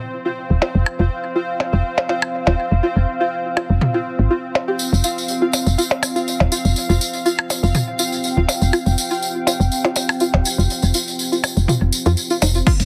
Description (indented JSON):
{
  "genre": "minimal techno",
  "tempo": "122 BPM",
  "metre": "4/4",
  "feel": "straight",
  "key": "unclear",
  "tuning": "A4 = 437 Hz",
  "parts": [
    { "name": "deep dark ambient pad", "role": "texture", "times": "0.2-12.8 s", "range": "C4 to G5", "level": "-28 LUFS", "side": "equal", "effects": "chorus, built-in reverb, sidechain pumping" },
    { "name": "pulsing gated texture", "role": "texture", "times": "0.0-12.7 s", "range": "C4 to F5", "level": "-32 LUFS", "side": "equal", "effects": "chorus, built-in reverb, sidechain pumping" },
    { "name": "string-like resonator pluck", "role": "riff", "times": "0.3-12.7 s", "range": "Eb4 to G4", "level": "-24 LUFS", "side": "equal", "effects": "chorus, sidechain pumping, digital delay" },
    { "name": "woody FM bass", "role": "bass", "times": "0.5-12.8 s", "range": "Eb1 to F2", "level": "-18 LUFS", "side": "equal", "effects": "sidechain pumping" },
    { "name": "electronic percussion blips and toms", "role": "percussion", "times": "0.6-12.5 s", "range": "none", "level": "-23 LUFS", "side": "equal", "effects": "dub echo" },
    { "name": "tambourine", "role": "percussion", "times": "4.8-12.8 s", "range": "none", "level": "-26 LUFS", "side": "equal", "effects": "none" },
    { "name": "electronic crash cymbal", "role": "drums", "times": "12.7-12.8 s", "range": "none", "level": "-29 LUFS", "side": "equal", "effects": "overdrive" },
    { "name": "electronic kick drum", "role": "drums", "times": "12.7-12.8 s", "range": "none", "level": "-16 LUFS", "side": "equal", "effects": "overdrive" },
    { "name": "electronic tambourine and hi-hat", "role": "drums", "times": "12.7-12.8 s", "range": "none", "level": "-31 LUFS", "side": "equal", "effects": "overdrive, high-pass filter on snare, high-pass filter on perc, high-pass filter on hats, high-pass filter on room" }
  ],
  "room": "moderate small room reverb, RT60 0.5 s",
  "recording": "heavily compressed radio sound",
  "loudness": "-19 LUFS",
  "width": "mono",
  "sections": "0.0-12.7 A section",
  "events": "none",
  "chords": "0.0 F5",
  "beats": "0.37 | 0.86 1.35 1.85 2.34 | 2.83 3.32 3.81 4.31 | 4.80 5.29 5.78 6.27 | 6.76 7.26 7.75 8.24 | 8.73 9.22 9.72 10.21 | 10.70 11.19 11.68 12.18 | 12.67"
}